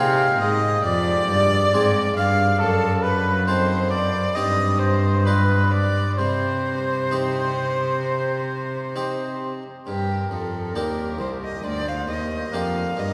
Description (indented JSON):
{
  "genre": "classical, baroque-style sonata movement with continuo",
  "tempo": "64-69 BPM",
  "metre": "4/4",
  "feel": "rubato",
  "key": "C minor, G minor from 9.9 s",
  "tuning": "A4 = 442 Hz",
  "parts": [
    { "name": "warm violin", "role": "melody", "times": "0.0-13.1 s", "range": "G4 to F5", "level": "-29 LUFS", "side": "equal", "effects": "none" },
    { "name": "warm oboe", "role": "second line", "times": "0.0-13.1 s", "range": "G4 to F5", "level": "-27 LUFS", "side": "equal", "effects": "none" },
    { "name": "harpsichord", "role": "accompaniment", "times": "0.0-13.1 s", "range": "C2 to A4", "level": "-30 LUFS", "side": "equal", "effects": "none" },
    { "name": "warm cello", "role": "bass", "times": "0.0-13.1 s", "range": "C2 to C3", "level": "-26 LUFS", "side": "equal", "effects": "none" }
  ],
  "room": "wet cathedral reverb, RT60 5.1 s",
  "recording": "recorded in a church or concert hall",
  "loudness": "-22 LUFS",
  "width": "mono",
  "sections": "0.0-9.9 A section; 9.9-13.1 A section",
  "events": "none",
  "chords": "0.0 Ab; 0.8 Dm7b5/F; 2.6 F#dim7; 4.4 Cm/G; 5.3 G7; 6.2 Cm; 9.9 Gm"
}